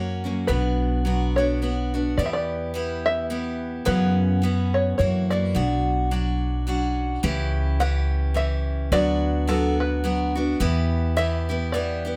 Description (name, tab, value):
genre	acoustic folk duo or small band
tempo	107 BPM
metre	3/4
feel	swing 57% on 8ths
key	B minor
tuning	A4 = 439 Hz
part	open-back banjo	melody	0.0-12.2 s	A4 to F#5	-29 LUFS	equal	none
part	picked steel-string acoustic guitar	accompaniment	0.0-12.2 s	F#2 to G4	-28 LUFS	equal	none
part	upright bass	bass	0.0-12.2 s	B1 to F#2	-26 LUFS	equal	none
room	light reverb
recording	none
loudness	-23 LUFS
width	mono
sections	0.0-7.2 A section; 7.2-12.2 B section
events	none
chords	0.5 Bm; 2.2 Em; 3.9 F#7sus4; 5.0 F#7; 5.5 Bmadd9; 7.2 C#dim; 8.9 Bm/D; 10.6 Em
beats	| 0.48 1.05 1.61 | 2.17 2.74 3.30 | 3.86 4.42 4.99 | 5.55 6.11 6.67 | 7.23 7.79 8.36 | 8.92 9.48 10.04 | 10.60 11.16 11.73